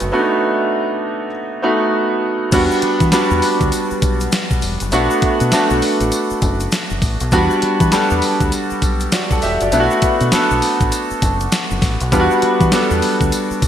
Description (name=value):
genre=R&B, new jack swing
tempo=100 BPM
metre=4/4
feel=swing 62% on 16ths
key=E minor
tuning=A4 = 440 Hz
part: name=clear concert grand piano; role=accompaniment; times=0.0-13.7 s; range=G3 to F#5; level=-16 LUFS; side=equal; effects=lush chorus
part: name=deep dub fingered electric bass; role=bass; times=0.0-13.7 s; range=E1 to E3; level=-20 LUFS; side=equal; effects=none
part: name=crisp 8-bit digital drum machine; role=drums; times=0.0-13.7 s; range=crash cymbal, hi-hat, kick drum, snare drum, tambourine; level=-19 LUFS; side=equal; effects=none
part: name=tube shaker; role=percussion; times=0.0-13.7 s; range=none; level=-33 LUFS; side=left 6 dB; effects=none
room=wet lush hall reverb, RT60 2.3 s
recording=bright 1980s-style digital production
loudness=-14 LUFS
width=side -10 dB against mid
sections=0.0-2.5 A section; 2.5-13.7 B section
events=none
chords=0.0 B7; 2.5 Em7; 4.9 Bm7; 7.3 Em7; 9.7 Bm7; 12.1 Em7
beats=| 0.12 0.72 1.32 1.92 | 2.52 3.12 3.72 4.32 | 4.92 5.52 6.12 6.72 | 7.32 7.92 8.52 9.12 | 9.72 10.32 10.92 11.52 | 12.12 12.72 13.32